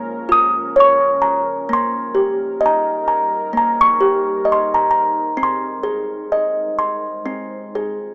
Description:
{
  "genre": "children's music, lullaby",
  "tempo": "64 BPM",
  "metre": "4/4",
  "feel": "straight",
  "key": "Ab major",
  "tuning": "A4 = 441 Hz",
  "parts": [
    { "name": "music box", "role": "melody", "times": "0.0-8.1 s", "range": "Bb3 to Eb6", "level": "-15 LUFS", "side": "equal", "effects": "none" },
    { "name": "deep dark ambient pad", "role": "sustained chords", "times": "0.0-8.1 s", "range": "Db2 to C5", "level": "-31 LUFS", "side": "equal", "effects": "chorus, built-in reverb" }
  ],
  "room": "moderate lush hall reverb, RT60 2.7 s",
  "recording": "rough home demo mix, small speaker sound",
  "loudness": "-14 LUFS",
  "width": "side -35 dB against mid",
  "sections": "0.0-8.1 A section",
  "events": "none",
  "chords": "0.0 Bbm/Db; 1.7 Eb; 5.4 Ab"
}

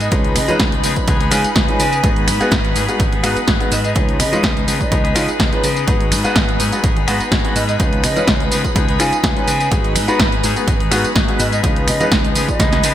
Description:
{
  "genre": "filtered disco house",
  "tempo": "125 BPM",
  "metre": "4/4",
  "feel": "swing 54% on 16ths",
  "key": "unclear",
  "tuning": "A4 = 439 Hz",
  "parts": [
    { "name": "hollow concert flute", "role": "melody", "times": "0.0-12.9 s", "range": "D#5 to G#5", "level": "-23 LUFS", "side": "right 1 dB", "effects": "sidechain pumping, digital delay" },
    { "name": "string machine, full ensemble", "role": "sustained chords", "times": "0.0-12.9 s", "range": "B4 to B5", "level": "-24 LUFS", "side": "equal", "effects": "ensemble chorus, sidechain pumping" },
    { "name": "direct-recorded clean electric guitar", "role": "riff", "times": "0.0-12.9 s", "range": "E#3 to G#4", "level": "-24 LUFS", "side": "left 6 dB", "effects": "vintage 12-bit sampler grit, sidechain pumping" },
    { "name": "slap bass", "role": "bass", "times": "0.0-12.9 s", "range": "G#1 to C#3", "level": "-21 LUFS", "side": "equal", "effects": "sidechain pumping" },
    { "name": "punchy analog drum machine", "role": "drums", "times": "0.0-12.9 s", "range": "finger snaps, hi-hat, snare drum, tambourine", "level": "-20 LUFS", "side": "right 1 dB", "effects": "sidechain pumping on hats, sidechain pumping on perc" },
    { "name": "tube shaker and congas", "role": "percussion", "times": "0.0-12.9 s", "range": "none", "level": "-30 LUFS", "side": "right 2 dB", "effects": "none" },
    { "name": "warm grand piano", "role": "accompaniment", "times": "0.1-12.6 s", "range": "G#3 to B4", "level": "-22 LUFS", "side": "equal", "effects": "phaser, sidechain pumping" },
    { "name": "electronic kick drum", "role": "drums", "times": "0.1-12.7 s", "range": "none", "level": "-19 LUFS", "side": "equal", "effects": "none" }
  ],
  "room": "light reverb",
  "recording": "bright 1980s-style digital production",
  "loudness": "-13 LUFS",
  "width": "side -11 dB against mid",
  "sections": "0.0-12.9 A section",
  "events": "drum fill 12.6-12.9",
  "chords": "0.1 C#9; 2.0 G#m7; 4.0 C#9; 5.9 G#m7; 7.8 C#9; 9.7 G#m7; 11.6 C#9"
}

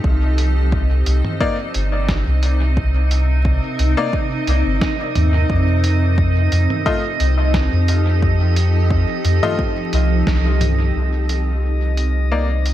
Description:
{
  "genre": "ambient dub",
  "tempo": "88 BPM",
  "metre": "4/4",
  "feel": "swing 54% on 16ths",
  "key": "C dorian",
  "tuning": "A4 = 440 Hz",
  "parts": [
    { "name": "granular cloud pad", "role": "sustained chords", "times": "0.0-12.7 s", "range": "C3 to Bb4", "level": "-24 LUFS", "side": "equal", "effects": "built-in reverb" },
    { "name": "soft dub sub bass", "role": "bass", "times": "0.0-12.7 s", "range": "G1 to F2", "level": "-16 LUFS", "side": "equal", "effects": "none" },
    { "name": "electronic kick drum", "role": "drums", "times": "0.0-10.4 s", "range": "none", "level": "-22 LUFS", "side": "equal", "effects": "overdrive" },
    { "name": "drifting glass-harmonics texture", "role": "texture", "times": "0.8-12.7 s", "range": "Eb5", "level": "-28 LUFS", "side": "right 7 dB", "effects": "chorus, built-in reverb" },
    { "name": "lo-fi sampler-style drum kit", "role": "drums", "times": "0.4-12.7 s", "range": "hi-hat, snare drum, toms", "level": "-26 LUFS", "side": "right 1 dB", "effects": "dub echo" },
    { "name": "bright upright piano", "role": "stabs", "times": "1.4-12.5 s", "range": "A3 to Eb5", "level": "-26 LUFS", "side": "left 4 dB", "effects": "low-pass filter, dub echo" }
  ],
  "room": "digital ambience",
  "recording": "vinyl crackle",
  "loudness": "-15 LUFS",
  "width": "side -13 dB against mid",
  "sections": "0.0-11.0 A section; 11.0-12.7 B section",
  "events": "band accent 10.3-10.6; filter sweep on ambient pad 11.0-12.7",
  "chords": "0.0 Cm7; 5.5 F7; 11.0 Cm7"
}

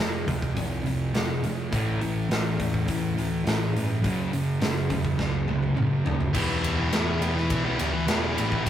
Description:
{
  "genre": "quiet-loud alternative rock",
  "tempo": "104 BPM",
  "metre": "4/4",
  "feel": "straight",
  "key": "E dorian",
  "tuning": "A4 = 440 Hz",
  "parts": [
    { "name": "thick fuzz guitar", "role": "riff", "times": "0.0-8.7 s", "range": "F2 to G4", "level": "-31 LUFS", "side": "left 4 dB", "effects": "distortion" },
    { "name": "thick fuzz guitar", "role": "riff", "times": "0.0-8.7 s", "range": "F2 to G4", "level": "-28 LUFS", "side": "right 3 dB", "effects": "distortion" },
    { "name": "picked electric bass", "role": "bass", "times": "0.0-8.7 s", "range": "E1 to G2", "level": "-32 LUFS", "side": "equal", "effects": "none" },
    { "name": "big rock drum kit", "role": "drums", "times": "0.3-8.7 s", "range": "crash cymbal, hi-hat, kick drum, ride cymbal, snare drum, toms", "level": "-28 LUFS", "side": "equal", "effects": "none" },
    { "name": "high-gain distorted guitar", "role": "riff", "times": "6.3-8.7 s", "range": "E2 to F#3", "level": "-29 LUFS", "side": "left 2 dB", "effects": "distortion" }
  ],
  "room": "moderate studio reverb, RT60 0.5 s",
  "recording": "rough rehearsal-room recording, tube saturation",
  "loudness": "-23 LUFS",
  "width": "side -10 dB against mid",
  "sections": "0.0-6.3 A section; 6.3-8.7 B section",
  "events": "drum fill 5.2-6.3",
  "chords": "0.0 F5; 1.7 A5; 4.0 F#5; 6.3 Em"
}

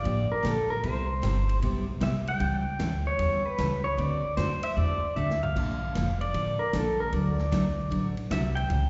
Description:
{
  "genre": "country, western swing",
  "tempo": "152 BPM",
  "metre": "4/4",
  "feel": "swing 65% on 8ths",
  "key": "unclear",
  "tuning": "A4 = 440 Hz",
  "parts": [
    { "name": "pedal steel guitar", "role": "melody", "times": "0.0-8.9 s", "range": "A4 to G5", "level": "-33 LUFS", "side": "equal", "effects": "slapback echo" },
    { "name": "picked steel-string acoustic guitar", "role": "accompaniment", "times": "0.0-8.9 s", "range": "C3 to A4", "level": "-35 LUFS", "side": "equal", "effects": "slapback echo" },
    { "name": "upright bass", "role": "bass", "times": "0.1-8.9 s", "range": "F1 to F#2", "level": "-32 LUFS", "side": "equal", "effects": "none" },
    { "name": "swinging big-band drum kit", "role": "drums", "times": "0.1-8.8 s", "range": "crash cymbal, hi-hat, kick drum, ride cymbal, snare drum, toms", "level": "-40 LUFS", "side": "equal", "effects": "none" }
  ],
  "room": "light reverb, studio ambience",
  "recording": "live gig heard through the venue's PA, recital hall reverb, nothing above 7.8 kHz",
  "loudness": "-28 LUFS",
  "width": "mono",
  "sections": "0.0-8.9 A section",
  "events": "drum fill 5.2-5.6",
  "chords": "0.0 Bb6; 0.8 Cmaj7; 2.4 A7; 4.0 D7; 5.6 Bbmaj7; 7.1 D"
}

